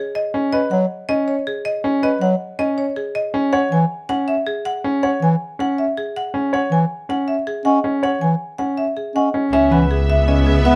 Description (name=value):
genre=classical, minimalist pattern music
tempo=160 BPM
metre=4/4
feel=straight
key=unclear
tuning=A4 = 440 Hz
part: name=marimba with medium hard mallets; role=melody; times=0.0-10.8 s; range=G#4 to G#5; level=-25 LUFS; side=equal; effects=none
part: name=clear grand piano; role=arpeggios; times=0.3-10.8 s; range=C#4 to C#5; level=-22 LUFS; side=equal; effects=none
part: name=warm bass clarinet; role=accompaniment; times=0.7-10.8 s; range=E3 to C#4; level=-19 LUFS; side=equal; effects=none
part: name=celesta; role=arpeggios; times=7.7-9.4 s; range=D#5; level=-26 LUFS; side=equal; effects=none
part: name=clear studio string section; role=sustained chords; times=9.5-10.8 s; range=B3 to E5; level=-27 LUFS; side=equal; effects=none
part: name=rich double bass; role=bass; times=9.5-10.8 s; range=C#2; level=-19 LUFS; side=equal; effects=none
room=light reverb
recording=close, detailed microphones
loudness=-19 LUFS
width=mono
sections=0.0-9.5 A section; 9.5-10.8 B section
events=none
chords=0.0 Badd9; 3.5 C#5; 9.5 C#m7